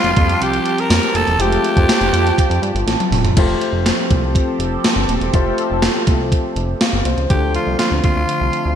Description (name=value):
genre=1980s-style pop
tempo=122 BPM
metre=4/4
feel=straight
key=F major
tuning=A4 = 440 Hz
part: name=raspy alto saxophone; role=melody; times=0.0-2.9, 7.3-8.7 s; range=F4 to Bb4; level=-19 LUFS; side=equal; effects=digital delay
part: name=warm concert grand piano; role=accompaniment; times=0.0-8.8 s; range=D3 to F5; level=-23 LUFS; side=left 4 dB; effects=wide subtle chorus
part: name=phased analog pad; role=sustained chords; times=0.0-8.8 s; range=D3 to A5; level=-23 LUFS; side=right 1 dB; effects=phaser, chorus
part: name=chorused synth bass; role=bass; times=0.0-8.7 s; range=Eb1 to G2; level=-20 LUFS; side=equal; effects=none
part: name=gated 80s digital drum machine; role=drums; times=0.0-8.6 s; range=crash cymbal, hi-hat, kick drum, snare drum, tambourine, toms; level=-17 LUFS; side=equal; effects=gated reverb, gated reverb snare
room=moderate lush hall reverb, RT60 2.5 s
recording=bright 1980s-style digital production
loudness=-14 LUFS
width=side -9 dB against mid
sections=0.0-3.4 A section; 3.4-7.3 B section; 7.3-8.8 C section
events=drum fill 2.9-3.4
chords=0.0 Fadd9; 7.3 Dm7